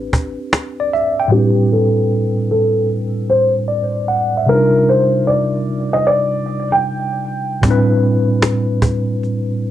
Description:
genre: lo-fi hip hop.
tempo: 76 BPM.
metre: 4/4.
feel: swing 66% on 16ths.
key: A minor.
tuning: A4 = 440 Hz.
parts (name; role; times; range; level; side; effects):
tine electric piano; accompaniment; 0.0-9.7 s; A2 to G5; -16 LUFS; equal; medium stereo tremolo, low-pass filter.
cajon; drums; 0.1-1.1, 7.6-9.4 s; none; -16 LUFS; equal; vintage 12-bit sampler grit.
felt-muted upright piano; melody; 1.3-7.6 s; G4 to G5; -16 LUFS; equal; low-pass filter, plate reverb, tape echo.
room: moderate studio reverb, RT60 0.5 s.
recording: cassette tape.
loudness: -14 LUFS.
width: side -12 dB against mid.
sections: 0.0-1.3 A section; 1.3-9.7 B section.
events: filter sweep 1.3-9.7.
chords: 0.0 Am11; 4.5 Cm11; 7.6 Am11.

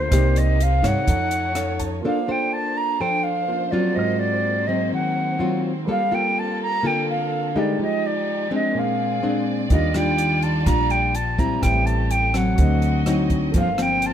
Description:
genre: bossa nova.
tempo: 125 BPM.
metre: 4/4.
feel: straight.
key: Bb major.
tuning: A4 = 444 Hz.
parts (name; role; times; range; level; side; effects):
silver concert flute; melody; 0.0-14.1 s; C5 to Bb5; -23 LUFS; right 1 dB; none.
clear grand piano; accompaniment; 0.0-14.1 s; F3 to F6; -33 LUFS; right 7 dB; none.
nylon-string guitar; accompaniment; 0.0-14.1 s; G2 to C#5; -23 LUFS; left 1 dB; none.
warm studio violin section; sustained chords; 0.0-14.1 s; G3 to Eb5; -33 LUFS; right 1 dB; none.
upright bass; bass; 0.0-2.0, 9.7-14.1 s; G1 to G2; -22 LUFS; equal; none.
compact cocktail drum kit; drums; 0.1-1.9, 9.7-14.1 s; hi-hat, kick drum, rim click; -25 LUFS; equal; none.
room: light reverb.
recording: none.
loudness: -19 LUFS.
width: side -9 dB against mid.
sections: 0.0-2.0 A section; 2.0-14.1 B section.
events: grand piano fill 1.3-2.0.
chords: 0.1 Cm7; 1.1 Faug7; 2.0 Bbmaj9; 4.0 Ab13; 5.9 Gm9; 7.8 Fm9; 8.8 Bb9; 9.7 Ebmaj9; 11.6 Am7; 12.6 D7b9; 13.5 Gm11.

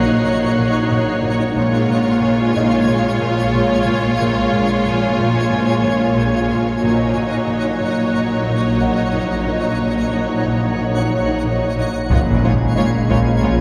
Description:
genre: cinematic, suspense film score.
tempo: 91 BPM.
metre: 4/4.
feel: straight.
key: Bb minor.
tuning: A4 = 440 Hz.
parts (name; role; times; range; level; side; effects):
rich symphonic violin section; melody; 0.0-13.5 s; Db5; -28 LUFS; equal; none.
warm symphonic violin section; second line; 0.0-13.5 s; Eb4 to F4; -28 LUFS; equal; none.
rich symphonic viola section; accompaniment; 0.0-13.5 s; Gb3 to Ab3; -27 LUFS; equal; none.
twinkling granular texture; sustained chords; 0.0-13.6 s; Eb4 to Ab5; -26 LUFS; equal; built-in reverb.
concert harp; riff; 0.0-13.6 s; Bb2; -26 LUFS; equal; none.
rich symphonic cello section; bass; 0.0-13.6 s; Bb2; -22 LUFS; equal; none.
swarming drone; drone; 0.0-13.6 s; Bb1; -28 LUFS; equal; built-in reverb.
rich symphonic violin section; texture; 0.0-1.2, 12.1-13.6 s; Bb5 to C7; -34 LUFS; equal; none.
warm baby grand piano; texture; 0.0-13.6 s; Eb4 to Gb5; -34 LUFS; equal; none.
warm symphonic double bass section; bass; 1.6-2.2, 6.8-7.5, 12.1-13.6 s; Bb1; -24 LUFS; equal; none.
mellow French horn section; sustained chords; 12.1-13.6 s; Ab3 to Db4; -27 LUFS; equal; none.
taiko ensemble; drums; 12.1-13.6 s; none; -26 LUFS; equal; none.
timpani; percussion; 12.1-13.1 s; Bb2; -28 LUFS; equal; none.
impact; sound effects; 12.1-13.6 s; none; -26 LUFS; equal; none.
room: wet scoring stage reverb, RT60 1.5 s.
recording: none.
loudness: -17 LUFS.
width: mono.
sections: 0.0-12.1 A section; 12.1-13.6 B section.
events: impact 12.1-13.6.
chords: 0.0 Ebm7/Bb; 1.6 Bbm7; 6.8 Ebm7/Bb; 12.1 Bbm7.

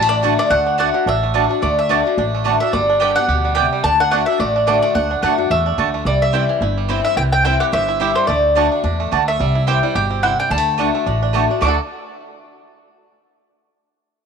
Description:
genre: bluegrass.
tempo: 216 BPM.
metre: 4/4.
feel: swing 56% on 8ths.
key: D mixolydian.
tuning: A4 = 441 Hz.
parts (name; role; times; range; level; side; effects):
mandolin; melody; 0.0-11.8 s; C5 to D6; -18 LUFS; equal; none.
picked acoustic archtop guitar; accompaniment; 0.0-11.8 s; G2 to G4; -23 LUFS; left 11 dB; none.
bluegrass banjo; arpeggios; 0.0-11.8 s; D3 to A4; -24 LUFS; right 12 dB; none.
upright bass; bass; 0.0-11.8 s; G1 to F#2; -22 LUFS; equal; none.
mandolin; stabs; 0.2-11.8 s; A3 to A5; -23 LUFS; right 11 dB; none.
room: moderate plate reverb, RT60 2.6 s.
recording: 1960s-style stereo with parts hard left and right.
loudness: -14 LUFS.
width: side -6 dB against mid.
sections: 0.5-9.4 A section; 9.4-11.6 B section; 11.6-12.7 C section.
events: none.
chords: 0.0 D; 2.7 G; 3.8 D; 6.1 C; 8.3 D; 9.4 C; 10.5 D.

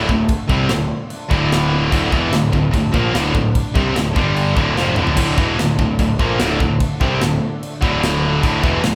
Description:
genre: heavy metal.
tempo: 148 BPM.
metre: 4/4.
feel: straight.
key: D minor.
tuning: A4 = 441 Hz.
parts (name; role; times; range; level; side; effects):
lush unison pad; sustained chords; 0.2-8.9 s; D3 to D4; -34 LUFS; equal; none.
distorted electric guitar; riff; 0.0-8.9 s; D2 to C4; -25 LUFS; equal; overdrive.
heavy high-gain guitar; riff; 0.0-8.9 s; D2 to C4; -24 LUFS; equal; distortion.
scooped high-gain guitar; riff; 0.0-8.9 s; D2 to C4; -24 LUFS; equal; distortion.
fuzz picked electric bass; bass; 0.0-8.9 s; D1 to C2; -25 LUFS; equal; overdrive.
tight metal drum kit; drums; 0.1-8.9 s; crash cymbal, kick drum, snare drum, toms; -23 LUFS; equal; none.
room: moderate large studio reverb, RT60 1.2 s.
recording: band playing live in one room.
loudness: -17 LUFS.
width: mono.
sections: 0.0-8.9 A section.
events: drum fill 4.8-5.2.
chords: 0.0 Dm; 4.2 G5; 4.6 Dm.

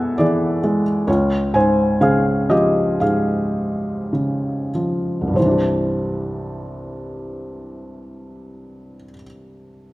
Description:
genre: classical, lyrical solo piano.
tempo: 48-69 BPM.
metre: 4/4.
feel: rubato.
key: unclear.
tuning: A4 = 441 Hz.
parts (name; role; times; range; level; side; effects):
felt-muted upright piano; solo; 0.0-9.9 s; C2 to G#5; -18 LUFS; equal; none.
room: moderate recital hall reverb, RT60 1.5 s.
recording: none.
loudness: -16 LUFS.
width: side -18 dB against mid.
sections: 0.0-5.4 A section; 5.4-9.9 B section.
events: slowing down 0.0-5.4.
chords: 0.0 E; 1.1 Db; 5.4 Cadd9.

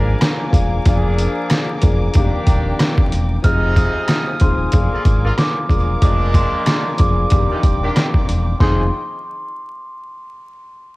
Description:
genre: hip hop, boom-bap hip-hop.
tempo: 93 BPM.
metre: 4/4.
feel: swing 58% on 16ths.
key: F dorian.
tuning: A4 = 440 Hz.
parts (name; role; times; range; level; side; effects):
dark grand piano; accompaniment; 0.0-8.9 s; F2 to Ab4; -24 LUFS; left 4 dB; high-pass filter, low-pass filter, cassette tape.
warm studio string section; sustained chords; 0.0-8.9 s; F3 to Eb6; -30 LUFS; equal; high-pass filter, low-pass filter, cassette tape.
clear horn section; stabs; 0.0-8.8 s; Bb2 to Bb4; -27 LUFS; equal; high-pass filter, low-pass filter, cassette tape, analog delay.
sub bass with octave; bass; 0.0-8.9 s; Eb1 to Ab1; -18 LUFS; equal; none.
trip hop sampler-style drum kit; drums; 0.2-8.8 s; hi-hat, kick drum, rim click, snare drum; -16 LUFS; equal; cassette tape.
glockenspiel with rubber mallets; melody; 3.4-8.9 s; C6 to F6; -24 LUFS; right 1 dB; high-pass filter, low-pass filter, cassette tape, analog delay.
room: studio reverb.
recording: home recording on cassette, vinyl crackle.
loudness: -14 LUFS.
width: side -21 dB against mid.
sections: 0.0-3.4 A section; 3.4-8.6 B section; 8.6-11.0 C section.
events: none.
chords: 0.0 Bb7; 2.2 Ebmaj7; 3.4 Fm7; 4.7 Bb7/F; 7.3 Ebmaj7; 8.6 Fm7.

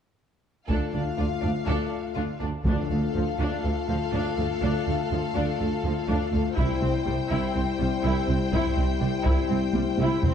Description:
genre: cinematic, epic orchestral film score.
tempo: 123 BPM.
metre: 4/4.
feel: straight.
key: D minor.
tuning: A4 = 440 Hz.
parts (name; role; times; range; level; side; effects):
clear studio violin section; melody; 0.7-10.3 s; F5 to G5; -35 LUFS; left 6 dB; none.
rich symphonic violin section; second line; 0.7-10.3 s; D4 to C5; -34 LUFS; left 4 dB; none.
rich symphonic viola section; accompaniment; 0.7-10.3 s; F3 to E4; -32 LUFS; right 1 dB; none.
mellow French horn section; sustained chords; 0.7-10.3 s; G3 to F4; -30 LUFS; left 8 dB; none.
rich symphonic double bass section; bass; 0.7-10.3 s; C2 to D2; -30 LUFS; right 2 dB; none.
warm symphonic cello section; bass; 0.7-10.3 s; C2 to D2; -30 LUFS; right 2 dB; none.
taiko ensemble; drums; 0.7-3.6, 6.6-10.3 s; none; -28 LUFS; equal; none.
timpani; percussion; 2.6-3.4 s; D3; -34 LUFS; left 2 dB; none.
room: moderate scoring stage reverb, RT60 2.1 s.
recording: dark, warm production.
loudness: -23 LUFS.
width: side -8 dB against mid.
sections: 0.7-2.7 A section; 2.7-10.3 B section.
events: build-up 2.7-10.3; drum fill 9.8-10.3.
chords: 0.7 Dm; 6.6 C.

